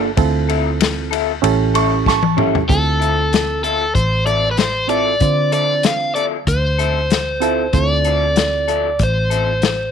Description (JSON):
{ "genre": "straight-eighth soul blues", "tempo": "95 BPM", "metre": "4/4", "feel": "straight", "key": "D minor", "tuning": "A4 = 436 Hz", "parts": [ { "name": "bright upright piano", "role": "second line", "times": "0.0-2.4 s", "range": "G4 to C#6", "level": "-19 LUFS", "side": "right 13 dB", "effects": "none" }, { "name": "reed electric piano", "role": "accompaniment", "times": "0.0-8.7 s", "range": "C4 to C5", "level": "-21 LUFS", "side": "right 14 dB", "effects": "none" }, { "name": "electric guitar through a small old amp", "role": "stabs", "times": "0.0-9.5 s", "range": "F3 to A4", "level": "-24 LUFS", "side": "left 14 dB", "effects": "analog chorus" }, { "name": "vintage muted fingered electric bass", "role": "bass", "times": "0.0-9.9 s", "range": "G1 to D3", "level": "-20 LUFS", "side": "equal", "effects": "none" }, { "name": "warm soul drum kit", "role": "drums", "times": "0.2-9.8 s", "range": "hi-hat, kick drum, ride cymbal, snare drum, toms", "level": "-19 LUFS", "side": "left 5 dB", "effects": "none" }, { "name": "crunchy overdriven guitar", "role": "melody", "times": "2.7-9.9 s", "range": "A4 to F5", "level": "-18 LUFS", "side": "equal", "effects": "none" } ], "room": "light reverb, small room ambience", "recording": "1960s-style stereo with parts hard left and right", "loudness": "-14 LUFS", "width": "side -7 dB against mid", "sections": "0.0-2.7 A section; 2.7-9.9 B section", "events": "upright piano solo 0.0-2.7; drum fill 2.1-2.7", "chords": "0.2 Dm9; 1.4 A7; 2.7 Dm9" }